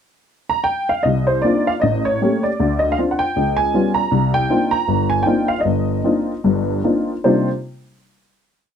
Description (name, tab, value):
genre	solo jazz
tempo	156 BPM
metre	4/4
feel	swing 65% on 8ths, rubato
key	C minor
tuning	A4 = 440 Hz
part	honky-tonk upright piano	solo	0.5-7.5 s	G1 to Bb5	-16 LUFS	equal	none
room	light reverb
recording	close, detailed microphones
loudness	-16 LUFS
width	side -8 dB against mid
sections	0.0-1.0 pickup bar; 1.0-7.2 A section; 7.2-8.8 final chord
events	none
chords	0.0 N.C.; 1.0 Cm11; 1.8 A7b9; 2.6 D7#9; 3.4 Db7#11; 4.1 Cm11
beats	0.27 0.66 | 1.04 1.44 1.83 2.21 | 2.59 2.97 3.35 3.73 | 4.11 4.49 4.88 5.26 | 5.65 6.04 6.43 6.83 | 7.24